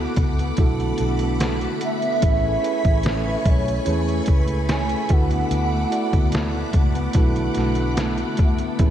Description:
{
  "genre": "indie pop, bedroom pop",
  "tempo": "73 BPM",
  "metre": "4/4",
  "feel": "straight",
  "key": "unclear",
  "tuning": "A4 = 439 Hz",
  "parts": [
    { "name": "hollow clarinet-like synth lead", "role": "melody", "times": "0.0-8.9 s", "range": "A4 to G#5", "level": "-26 LUFS", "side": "right 3 dB", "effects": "ensemble chorus, analog delay" },
    { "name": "mellow electric guitar", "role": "accompaniment", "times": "0.0-8.9 s", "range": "D3 to B4", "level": "-29 LUFS", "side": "left 4 dB", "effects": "analog chorus, vibrato effect" },
    { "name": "soft electric-piano-like synth keys", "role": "accompaniment", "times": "0.0-8.9 s", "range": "B3 to D5", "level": "-28 LUFS", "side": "right 6 dB", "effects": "chorus" },
    { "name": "string machine, violins", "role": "sustained chords", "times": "0.0-8.9 s", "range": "A3 to D6", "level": "-29 LUFS", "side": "equal", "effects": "ensemble chorus" },
    { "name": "vintage muted fingered electric bass", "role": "bass", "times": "0.0-8.9 s", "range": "A1 to E2", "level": "-24 LUFS", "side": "equal", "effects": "none" },
    { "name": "trip hop sampler-style drum kit", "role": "drums", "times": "0.2-8.9 s", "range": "hi-hat, kick drum, snare drum", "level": "-21 LUFS", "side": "equal", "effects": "none" }
  ],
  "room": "moderate lush hall reverb, RT60 2.7 s",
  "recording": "dreamy mix soaked in reverb",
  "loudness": "-18 LUFS",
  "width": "side -10 dB against mid",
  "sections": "0.0-8.9 A section",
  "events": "none",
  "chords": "0.0 D6; 2.2 Amaj9; 5.1 D6"
}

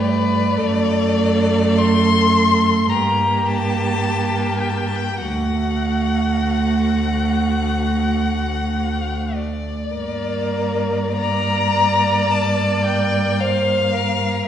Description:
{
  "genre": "classical, slow romantic movement for string quartet",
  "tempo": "48-56 BPM",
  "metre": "4/4",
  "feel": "rubato",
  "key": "G minor",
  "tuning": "A4 = 444 Hz",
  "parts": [
    { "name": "warm violin", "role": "melody", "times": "0.0-14.5 s", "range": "D5 to C6", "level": "-22 LUFS", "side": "left 4 dB", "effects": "none" },
    { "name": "dark violin", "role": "second line", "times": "0.0-14.5 s", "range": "F#4 to D5", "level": "-24 LUFS", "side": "equal", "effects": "none" },
    { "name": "warm viola", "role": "accompaniment", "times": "0.0-14.5 s", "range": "A3 to Bb3", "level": "-21 LUFS", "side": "right 4 dB", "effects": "none" },
    { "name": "rich cello", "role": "bass", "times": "0.0-14.4 s", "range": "D2 to G2", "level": "-23 LUFS", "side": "right 1 dB", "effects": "none" }
  ],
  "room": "wet recital hall reverb, RT60 1.5 s",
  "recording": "recorded in a church or concert hall, nothing above 10.3 kHz",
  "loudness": "-16 LUFS",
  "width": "side -10 dB against mid",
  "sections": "0.0-14.5 A section",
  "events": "none",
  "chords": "0.0 A7(no3)/G; 0.6 D/F#; 2.9 Gm; 5.2 D; 10.0 Gm"
}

